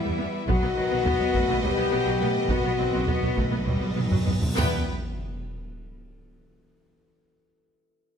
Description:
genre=cinematic, epic orchestral film score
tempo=204 BPM (eighths)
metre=7/8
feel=straight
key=E harmonic minor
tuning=A4 = 440 Hz
part: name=rich symphonic violin section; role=melody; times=0.0-4.9 s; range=D#5 to G5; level=-35 LUFS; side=left 2 dB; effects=none
part: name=warm symphonic violin section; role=second line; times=0.0-4.9 s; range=B4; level=-34 LUFS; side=left 4 dB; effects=none
part: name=mellow trombone section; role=sustained chords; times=0.0-4.8 s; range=D#3 to B3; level=-35 LUFS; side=right 7 dB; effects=none
part: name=warm French horn section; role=sustained chords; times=0.0-4.8 s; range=B3 to G4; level=-27 LUFS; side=left 6 dB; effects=none
part: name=rich symphonic cello section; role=bass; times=0.0-4.9 s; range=E2 to C4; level=-32 LUFS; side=right 1 dB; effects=none
part: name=rich studio viola section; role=accompaniment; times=0.1-4.9 s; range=F#3 to B3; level=-34 LUFS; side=right 1 dB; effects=none
part: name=warm symphonic double bass section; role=bass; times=0.1-4.9 s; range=E1 to E2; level=-32 LUFS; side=right 4 dB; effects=none
part: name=taiko ensemble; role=drums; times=0.5-4.7 s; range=none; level=-28 LUFS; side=equal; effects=none
part: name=timpani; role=percussion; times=0.5-4.9 s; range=E2 to B2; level=-32 LUFS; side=right 1 dB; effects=none
part: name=cymbal swell and sub drop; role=sound effects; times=3.8-6.7 s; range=none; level=-36 LUFS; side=equal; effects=none
room=light reverb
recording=close, detailed microphones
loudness=-22 LUFS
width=side -7 dB against mid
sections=0.0-4.6 A section; 4.6-6.7 B section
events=timpani fill 0.5-4.6; cymbal swell 3.8-4.6; drum fill 4.1-4.6; impact 4.6-6.7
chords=0.5 B; 4.6 E5

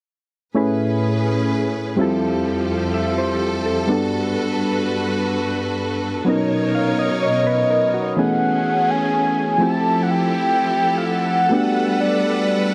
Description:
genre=R&B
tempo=63 BPM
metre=4/4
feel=straight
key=unclear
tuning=A4 = 440 Hz
part: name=soft electric-piano-like synth keys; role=accompaniment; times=0.5-12.7 s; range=E3 to F5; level=-22 LUFS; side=equal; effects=chorus
part: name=clear studio string section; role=sustained chords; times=0.6-12.7 s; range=F2 to F#5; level=-26 LUFS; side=equal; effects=none
part: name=mellow horn-like synth lead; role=melody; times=7.2-12.7 s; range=D5 to A5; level=-22 LUFS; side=equal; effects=chorus, tape echo
room=light reverb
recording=dark, warm production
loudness=-20 LUFS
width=mono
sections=0.6-8.2 A section; 8.2-12.7 B section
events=none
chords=0.6 Amaj9; 2.0 Fmaj9; 3.9 Gmaj9; 6.3 Bmaj9; 8.2 Amaj9; 9.6 Fmaj9; 11.5 Gmaj9

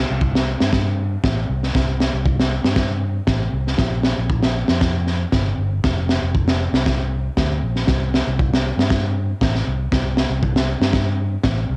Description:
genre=highlife guitar band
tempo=117 BPM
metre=4/4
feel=straight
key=unclear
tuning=A4 = 440 Hz
part: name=fingered electric bass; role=bass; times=0.0-11.8 s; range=F1 to G2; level=-21 LUFS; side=equal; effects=none
part: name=crunchy breakbeat drum kit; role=drums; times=0.2-11.6 s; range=kick drum, snare drum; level=-19 LUFS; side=equal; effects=cassette tape
room=little or no reverb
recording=home recording on cassette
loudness=-17 LUFS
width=side -36 dB against mid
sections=0.0-11.8 A section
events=none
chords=none

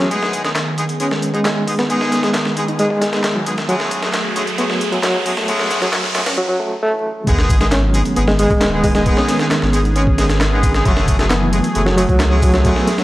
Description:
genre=breakbeat, breaks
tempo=134 BPM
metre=4/4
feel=straight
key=unclear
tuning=A4 = 438 Hz
part: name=phased analog pad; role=sustained chords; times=0.1-13.0 s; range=D#3 to G#4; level=-23 LUFS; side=right 1 dB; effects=phaser, chorus, vintage 12-bit sampler grit, sidechain pumping
part: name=reed electric piano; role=riff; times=0.0-13.0 s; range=E3 to F#4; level=-19 LUFS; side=equal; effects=fast tremolo, tube saturation, vintage 12-bit sampler grit, analog delay
part: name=brilliant horn section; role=stabs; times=0.0-13.0 s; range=G#3 to G#4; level=-22 LUFS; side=left 1 dB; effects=vintage 12-bit sampler grit, analog delay
part: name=breakbeat sampler-style drum kit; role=drums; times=0.0-13.0 s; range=hi-hat, kick drum, snare drum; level=-20 LUFS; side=equal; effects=high-pass filter on kick, high-pass filter on hats, high-pass filter on snare, high-pass filter on room
part: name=punchy analog drum machine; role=drums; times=0.0-13.0 s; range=handclaps, hi-hat, ride cymbal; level=-28 LUFS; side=equal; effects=high-pass filter on hats, high-pass filter on snare, high-pass filter on cymbals
part: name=riser and sub drop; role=sound effects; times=1.3-9.1 s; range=none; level=-25 LUFS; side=equal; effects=none
part: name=saturated sub bass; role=bass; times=7.3-12.7 s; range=D#1 to C#2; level=-18 LUFS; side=equal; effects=none
room=light reverb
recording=dry, gritty hardware recording, vinyl crackle, high-pass filter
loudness=-14 LUFS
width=side -16 dB against mid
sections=0.0-7.3 A section; 7.3-13.0 B section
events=build-up 0.0-7.3; filter sweep on reed electric piano 0.0-7.3; filter sweep on analog synth pad 0.0-7.3; riser 1.3-6.4; drop 7.3-13.0; impact 7.3-9.1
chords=0.1 G#m; 3.7 F#madd9; 7.3 G#m; 10.9 F#madd9

